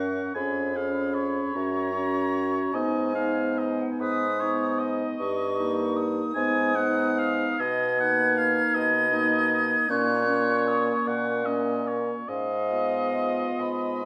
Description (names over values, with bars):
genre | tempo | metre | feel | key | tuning
classical, slow romantic movement for wind quintet | 44-53 BPM (dotted quarters) | 6/8 | rubato | unclear | A4 = 445 Hz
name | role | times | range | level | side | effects
mellow concert flute | melody | 0.0-14.1 s | F5 to Ab6 | -31 LUFS | equal | none
warm oboe | second line | 0.0-14.1 s | B4 to G#5 | -32 LUFS | equal | none
mellow French horn | accompaniment | 0.0-14.0 s | A#3 to C#4 | -34 LUFS | equal | none
warm clarinet | accompaniment | 0.0-14.0 s | Db4 to A#4 | -35 LUFS | equal | none
warm bassoon | bass | 0.0-14.1 s | E#2 to B2 | -31 LUFS | equal | none
room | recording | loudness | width
wet recital hall reverb, RT60 1.5 s | none | -25 LUFS | mono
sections
0.0-14.1 A section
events
none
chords
0.3 C#/E#; 1.6 F#; 2.7 G#m; 5.2 D#/G; 6.3 G#m; 7.6 Bmaj7; 9.9 Gb/Bb; 12.3 Fdim/Ab